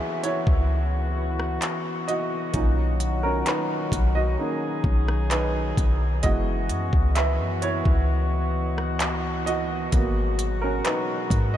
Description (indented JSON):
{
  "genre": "contemporary R&B",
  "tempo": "65 BPM",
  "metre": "4/4",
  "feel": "straight",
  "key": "B major",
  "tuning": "A4 = 440 Hz",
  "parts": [
    { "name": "warm baby grand piano", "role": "accompaniment", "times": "0.0-11.6 s", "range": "A#2 to E5", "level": "-28 LUFS", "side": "right 2 dB", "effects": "lush chorus" },
    { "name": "mellow brass ensemble", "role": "sustained chords", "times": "0.0-11.6 s", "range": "B2 to D#5", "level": "-29 LUFS", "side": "left 2 dB", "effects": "none" },
    { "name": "smooth R&B drum kit", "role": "drums", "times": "0.2-11.5 s", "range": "handclaps, hi-hat, kick drum, rim click", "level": "-28 LUFS", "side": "equal", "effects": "none" },
    { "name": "clean 808-style bass", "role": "bass", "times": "0.5-11.6 s", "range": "F#1 to G#2", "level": "-24 LUFS", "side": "equal", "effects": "none" }
  ],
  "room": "moderate huge ambient reverb, RT60 8.9 s",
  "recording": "dreamy mix soaked in reverb",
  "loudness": "-22 LUFS",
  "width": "side -11 dB against mid",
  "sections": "0.0-11.6 A section",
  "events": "grand piano solo 0.0-11.6",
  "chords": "0.0 C#m11; 2.5 Bmaj7; 6.2 F#7sus4; 9.9 G#m9",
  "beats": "0.69 1.62 | 2.54 3.46 4.39 5.31 | 6.23 7.16 8.08 9.00 | 9.93 10.85"
}